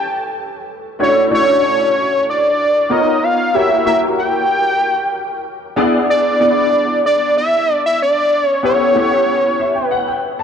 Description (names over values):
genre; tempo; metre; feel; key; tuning
pop; 94 BPM; 4/4; straight; D major; A4 = 441 Hz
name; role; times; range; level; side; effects
fat analog lead; melody; 0.0-10.4 s; C#5 to A5; -14 LUFS; equal; none
warm grand piano; accompaniment; 0.0-10.4 s; A3 to A5; -18 LUFS; left 1 dB; ensemble chorus
room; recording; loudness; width
moderate lush hall reverb, RT60 2.5 s; dark, warm production; -12 LUFS; side -7 dB against mid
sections
0.0-10.4 A section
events
grand piano fill 9.3-10.4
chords
0.0 A7; 1.0 Dmaj9; 2.9 C#13; 3.5 F#7b9; 5.8 E7; 8.6 A9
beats
0.36 | 0.99 1.63 2.27 2.90 | 3.54 4.18 4.81 5.45 | 6.09 6.72 7.36 8.00 | 8.64 9.27 9.91